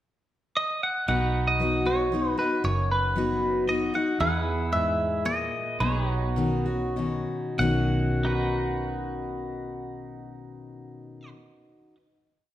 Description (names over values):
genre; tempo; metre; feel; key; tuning
honky-tonk and classic country; 92-116 BPM; 3/4; straight; B major; A4 = 440 Hz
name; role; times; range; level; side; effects
twangy electric guitar; melody; 0.6-11.3 s; B4 to F#5; -28 LUFS; right 1 dB; phaser
picked steel-string acoustic guitar; accompaniment; 1.1-11.4 s; E2 to F#4; -28 LUFS; left 2 dB; none
pedal steel guitar; sustained chords; 1.1-12.0 s; D#4 to B4; -34 LUFS; right 1 dB; none
vintage muted fingered electric bass; bass; 1.1-11.3 s; F#1 to E2; -29 LUFS; right 1 dB; none
room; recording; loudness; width
wet recital hall reverb, RT60 1.4 s; none; -24 LUFS; side -12 dB against mid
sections
0.0-1.1 pickup bar; 1.1-7.6 A section; 7.6-11.5 final chord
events
slowing down 4.2-7.6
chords
0.0 N.C.; 1.1 B; 4.2 E; 5.8 Badd9